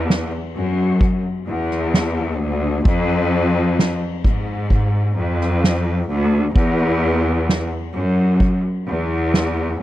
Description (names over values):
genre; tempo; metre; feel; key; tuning
pop ballad; 65 BPM; 4/4; straight; unclear; A4 = 440 Hz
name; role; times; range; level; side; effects
bright studio cello section; bass; 0.0-9.8 s; D2 to Ab2; -18 LUFS; left 1 dB; none
soft-mallet drum kit; drums; 0.1-9.8 s; kick drum, ride cymbal, snare drum; -22 LUFS; equal; none
room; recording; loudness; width
little or no reverb; dry, close 1970s-style studio recording; -16 LUFS; side -14 dB against mid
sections
0.0-9.8 A section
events
none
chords
none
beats
0.09 1.01 1.94 | 2.86 3.78 4.71 5.63 | 6.55 7.48 8.40 9.32